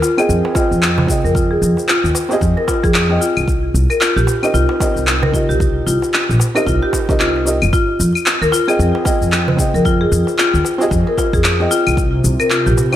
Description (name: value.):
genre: organic downtempo.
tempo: 113 BPM.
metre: 4/4.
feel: swing 59% on 16ths.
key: F minor.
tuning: A4 = 438 Hz.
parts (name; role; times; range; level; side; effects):
marimba with medium hard mallets; arpeggios; 0.0-12.8 s; F4 to Bb4; -18 LUFS; left 1 dB; low-pass filter, tape echo.
electronic shaker, claves and handclaps; drums; 0.0-13.0 s; none; -19 LUFS; left 1 dB; overdrive.
darbuka; percussion; 0.0-12.9 s; none; -25 LUFS; right 3 dB; none.
felt-muted upright piano; accompaniment; 0.2-13.0 s; C4 to G5; -21 LUFS; right 1 dB; sidechain pumping, tape echo.
upright bass; bass; 0.3-12.7 s; G1 to F2; -17 LUFS; equal; tube saturation, sidechain pumping.
electronic kick drum; drums; 0.6-12.1 s; none; -18 LUFS; equal; overdrive.
warm analog pad; sustained chords; 12.0-13.0 s; C3; -20 LUFS; equal; chorus, vintage 12-bit sampler grit, sidechain pumping.
room: light reverb, small room ambience.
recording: none.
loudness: -13 LUFS.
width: side -12 dB against mid.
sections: 0.0-13.0 A section.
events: filter sweep on marimba 0.0-13.0.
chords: 0.0 Fm9; 3.5 Cm7; 7.7 Fm9; 12.0 C7(no3).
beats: 0.29 0.82 | 1.35 1.89 2.42 2.95 | 3.48 4.01 4.54 5.07 | 5.60 6.13 6.66 7.20 | 7.73 8.26 8.79 9.32 | 9.85 10.38 10.91 11.44 | 11.97 12.51.